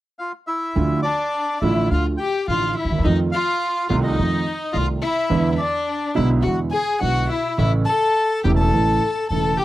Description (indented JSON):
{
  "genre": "tango",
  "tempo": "105 BPM",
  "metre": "4/4",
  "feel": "rubato",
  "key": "unclear",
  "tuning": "A4 = 440 Hz",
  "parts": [
    { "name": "bandoneon", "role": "melody", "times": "0.2-9.6 s", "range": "D4 to A5", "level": "-22 LUFS", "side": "left 1 dB", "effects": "none" },
    { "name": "warm grand piano", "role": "accompaniment", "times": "0.8-9.6 s", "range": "E1 to F4", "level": "-21 LUFS", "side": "right 3 dB", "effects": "none" },
    { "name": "upright bass", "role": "bass", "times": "0.8-9.6 s", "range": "E1 to F2", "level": "-23 LUFS", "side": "equal", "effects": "none" },
    { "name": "warm violin", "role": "second line", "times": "1.0-9.6 s", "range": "D4 to A4", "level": "-26 LUFS", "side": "left 6 dB", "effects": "none" }
  ],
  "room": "light reverb",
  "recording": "dry, close 1970s-style studio recording",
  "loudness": "-18 LUFS",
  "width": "side -15 dB against mid",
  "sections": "0.8-9.6 A section",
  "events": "none",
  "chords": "0.0 N.C.; 0.8 Dm; 3.1 F7; 5.3 E7; 7.6 A"
}